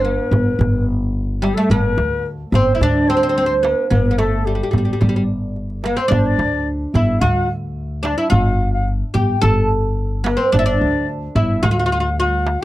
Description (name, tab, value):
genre	Arabic maqam ensemble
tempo	109 BPM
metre	4/4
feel	straight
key	G maqam rast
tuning	A4 = 440 Hz
part	oud	melody	0.0-12.6 s	G3 to A4	-19 LUFS	right 1 dB	none
part	ney	second line	0.0-12.6 s	G4 to A5	-23 LUFS	left 4 dB	none
part	upright bass	bass	0.0-12.6 s	G1 to D2	-20 LUFS	left 1 dB	none
part	darbuka	percussion	0.0-12.6 s	none	-21 LUFS	right 1 dB	none
room	little or no reverb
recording	dry, close 1970s-style studio recording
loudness	-15 LUFS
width	side -16 dB against mid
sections	0.0-12.6 A section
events	none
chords	none